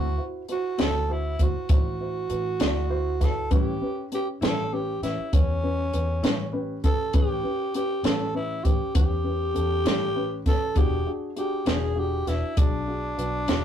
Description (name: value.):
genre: slow blues.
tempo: 66 BPM (dotted quarters).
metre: 12/8.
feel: straight.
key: A mixolydian.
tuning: A4 = 439 Hz.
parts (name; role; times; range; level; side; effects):
growling tenor saxophone; melody; 0.0-13.6 s; C#4 to A4; -28 LUFS; right 1 dB; none.
dark baby grand piano; accompaniment; 0.0-13.6 s; C#4 to D5; -32 LUFS; left 1 dB; none.
mellow electric guitar; accompaniment; 0.0-13.6 s; A2 to G#4; -34 LUFS; left 3 dB; tremolo.
vintage muted fingered electric bass; bass; 0.0-13.6 s; E1 to E2; -30 LUFS; equal; none.
compact cocktail drum kit; drums; 0.5-13.6 s; hi-hat, kick drum, snare drum; -23 LUFS; equal; none.
room: moderate small room ambience, RT60 0.5 s.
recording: rough rehearsal-room recording, tube saturation.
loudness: -23 LUFS.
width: side -9 dB against mid.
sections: 0.0-13.6 A section.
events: none.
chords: 0.0 D7; 3.5 A7; 10.8 E7.